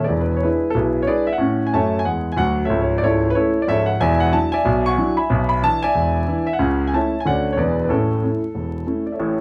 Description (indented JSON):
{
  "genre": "jazz, stride piano",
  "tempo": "185 BPM",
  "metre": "4/4",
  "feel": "swing 60% on 8ths",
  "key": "A major",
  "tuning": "A4 = 440 Hz",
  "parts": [
    { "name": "warm grand piano", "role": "solo", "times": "0.0-9.4 s", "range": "C#1 to C#6", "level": "-19 LUFS", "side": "equal", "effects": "none" }
  ],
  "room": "wet small room reverb, RT60 0.5 s",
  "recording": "band playing live in one room, vinyl crackle",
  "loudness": "-19 LUFS",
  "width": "mono",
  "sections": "0.0-9.2 A section",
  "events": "none",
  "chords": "0.1 E7; 1.4 A; 2.7 A/C#; 4.0 E9; 5.3 E7/B; 6.6 A/C#; 7.3 Dmaj7; 7.6 E7; 7.9 A",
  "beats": "| 0.11 0.44 0.76 1.09 | 1.41 1.74 2.06 2.39 | 2.71 3.04 3.36 3.68 | 4.01 4.33 4.66 4.98 | 5.31 5.63 5.96 6.28 | 6.60 6.93 7.25 7.58 | 7.90 8.22 8.55 8.87 | 9.20"
}